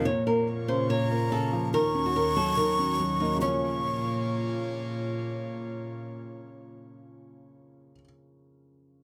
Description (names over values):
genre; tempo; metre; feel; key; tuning
hip hop; 143 BPM; 4/4; half-time; Bb minor; A4 = 436 Hz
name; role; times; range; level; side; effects
flamenco guitar; melody; 0.0-4.6 s; Db4 to Db5; -32 LUFS; equal; digital delay
breathy jazz flute; second line; 0.0-4.6 s; Bb5 to Db6; -32 LUFS; equal; digital delay
dark concert grand piano; accompaniment; 0.0-9.0 s; Bb2 to Db4; -34 LUFS; equal; none
airy breathy pad; sustained chords; 0.0-7.5 s; Eb2 to Db5; -35 LUFS; equal; chorus
room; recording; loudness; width
moderate studio reverb, RT60 0.6 s; none; -28 LUFS; mono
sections
0.1-3.4 A section; 3.4-6.8 B section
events
none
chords
0.1 Bbm; 1.7 Ebm7; 3.4 Bbm